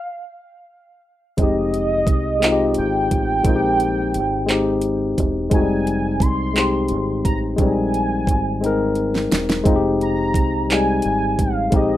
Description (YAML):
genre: slow six-eight R&B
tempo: 58 BPM (dotted quarters)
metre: 6/8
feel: straight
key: F minor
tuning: A4 = 440 Hz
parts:
  - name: warm velvety synth lead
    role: melody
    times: 0.0-12.0 s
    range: Eb5 to C6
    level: -23 LUFS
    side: right 1 dB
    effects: chorus
  - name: tine electric piano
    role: accompaniment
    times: 1.4-12.0 s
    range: G3 to Bb4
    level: -20 LUFS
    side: left 3 dB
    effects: overdrive
  - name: deep dub fingered electric bass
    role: bass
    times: 1.4-12.0 s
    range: E1 to C2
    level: -26 LUFS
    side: right 1 dB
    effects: none
  - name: smooth R&B drum kit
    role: drums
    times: 1.4-11.9 s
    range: handclaps, hi-hat, kick drum, snare drum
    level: -20 LUFS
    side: right 2 dB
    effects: none
room: light reverb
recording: rough home demo mix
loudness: -17 LUFS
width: side -13 dB against mid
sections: 0.0-1.4 A section; 1.4-12.0 B section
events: stop 0.0-1.4; drum fill 8.6-9.7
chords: 0.0 N.C.; 1.4 Fm7; 3.5 Bb13sus4; 5.5 Fm7; 7.6 Bb13sus4; 9.7 Fm7